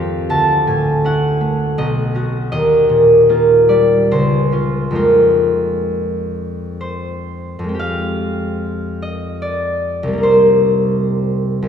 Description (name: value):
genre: classical, solo harp piece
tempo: 59-81 BPM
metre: 3/4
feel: rubato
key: F dorian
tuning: A4 = 440 Hz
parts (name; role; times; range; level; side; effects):
- concert harp; solo; 0.0-11.7 s; B1 to A5; -13 LUFS; equal; none
room: wet church reverb, RT60 2.6 s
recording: recorded in a church or concert hall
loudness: -13 LUFS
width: side -8 dB against mid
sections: 0.0-7.8 A section; 7.8-11.7 B section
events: none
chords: 0.3 Dmaj9; 1.8 Badd9; 2.5 Ebadd9; 4.1 Dbmaj7; 5.0 Fm7; 7.8 Fmadd9; 10.2 Cm7